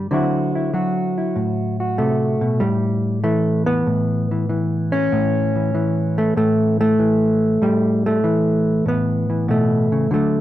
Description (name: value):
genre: solo jazz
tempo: 96 BPM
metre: 4/4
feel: swing 69% on 8ths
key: unclear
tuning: A4 = 437 Hz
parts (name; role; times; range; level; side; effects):
- hollow-body jazz guitar; solo; 0.0-10.4 s; A2 to F#4; -16 LUFS; equal; none
room: moderate club reverb, RT60 0.5 s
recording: none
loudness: -17 LUFS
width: side -13 dB against mid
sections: 0.0-10.4 A section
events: none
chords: 0.1 D9; 2.6 A9